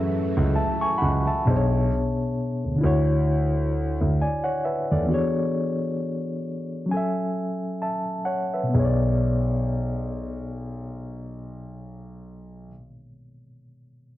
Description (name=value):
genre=lo-fi hip hop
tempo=66 BPM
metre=4/4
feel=swing 57% on 16ths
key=B dorian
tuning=A4 = 439 Hz
part: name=mellow reed electric piano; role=accompaniment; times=0.0-14.2 s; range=B2 to C#6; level=-25 LUFS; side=left 1 dB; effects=fast tremolo, cassette tape, low-pass filter
part: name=string machine, cellos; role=sustained chords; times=0.0-1.4 s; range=E3 to F#4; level=-33 LUFS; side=right 3 dB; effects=ensemble chorus, plate reverb
part: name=dark concert grand piano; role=bass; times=0.0-12.7 s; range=B1 to F#2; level=-25 LUFS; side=right 1 dB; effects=none
room=moderate small room reverb, RT60 0.5 s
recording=dark, warm production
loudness=-22 LUFS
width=side -14 dB against mid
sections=0.0-1.5 A section; 1.5-8.7 B section; 8.7-12.4 C section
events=filter sweep on reed electric piano 1.5-8.7; break 5.1-8.7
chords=0.0 F#m9; 1.5 Bm69; 2.8 Dmaj7; 5.1 E13; 6.9 F#m9; 8.7 Bm69